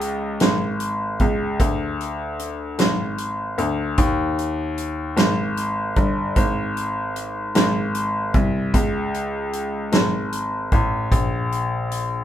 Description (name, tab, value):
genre	slow gospel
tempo	50 BPM (dotted quarters)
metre	6/8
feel	straight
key	unclear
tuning	A4 = 440 Hz
part	bright baby grand piano	bass	0.0-12.2 s	G1 to Eb2	-22 LUFS	left 1 dB	none
part	natural country drum kit	drums	0.0-12.1 s	hi-hat, kick drum, snare drum	-22 LUFS	equal	none
room	light reverb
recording	band playing live in one room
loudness	-20 LUFS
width	side -11 dB against mid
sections	0.0-12.2 A section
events	none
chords	none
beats	0.41 | 1.60 2.80 | 3.99 5.18 | 6.37 7.56 | 8.75 9.94 | 11.13